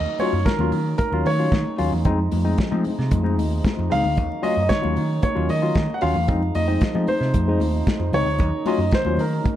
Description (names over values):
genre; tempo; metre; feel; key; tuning
disco; 114 BPM; 4/4; straight; Eb dorian; A4 = 441 Hz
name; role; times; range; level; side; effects
warm grand piano; melody; 0.0-9.6 s; Bb4 to Gb5; -25 LUFS; right 1 dB; slapback echo
barky tine electric piano; accompaniment; 0.0-9.2 s; Eb3 to F4; -26 LUFS; left 4 dB; overdrive, phaser
warm French horn section; sustained chords; 0.0-9.6 s; C3 to Eb4; -31 LUFS; right 3 dB; none
picked electric bass; bass; 0.0-9.4 s; Db2 to F3; -23 LUFS; right 1 dB; none
congas; percussion; 0.1-9.6 s; none; -30 LUFS; left 4 dB; none
warm soul drum kit; drums; 0.2-9.6 s; hi-hat, kick drum, snare drum; -24 LUFS; equal; none
room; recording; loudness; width
light reverb, small room ambience; dark, warm production; -18 LUFS; side -12 dB against mid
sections
0.0-9.6 A section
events
none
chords
0.0 Ebm7; 2.1 Fm7; 4.2 Ebm7; 6.3 Fm7; 8.4 Ebm7